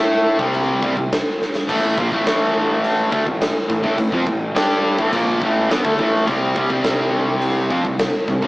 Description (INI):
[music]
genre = hard rock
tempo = 104 BPM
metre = 4/4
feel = straight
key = A minor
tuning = A4 = 440 Hz
[part]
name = cranked stack guitar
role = riff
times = 0.0-8.5 s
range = A2 to A4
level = -24 LUFS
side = right 1 dB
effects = overdrive
[part]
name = distorted electric guitar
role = riff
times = 0.0-8.5 s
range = A2 to A4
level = -20 LUFS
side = left 1 dB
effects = distortion
[part]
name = fuzz picked electric bass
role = bass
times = 0.0-8.5 s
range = A1 to A2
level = -24 LUFS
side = equal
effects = overdrive
[part]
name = huge arena drum kit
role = drums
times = 0.4-8.5 s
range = crash cymbal, kick drum, snare drum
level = -22 LUFS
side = equal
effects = none
[sound]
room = moderate stone room reverb, RT60 1.3 s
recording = rough rehearsal-room recording, warm saturation, small speaker sound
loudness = -16 LUFS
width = side -21 dB against mid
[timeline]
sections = 0.0-8.5 A section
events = drum fill 1.4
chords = 0.0 C5; 1.7 A5; 6.3 C5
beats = 0.52 1.10 | 1.67 2.25 2.82 3.40 | 3.97 4.55 5.12 5.70 | 6.27 6.84 7.42 7.99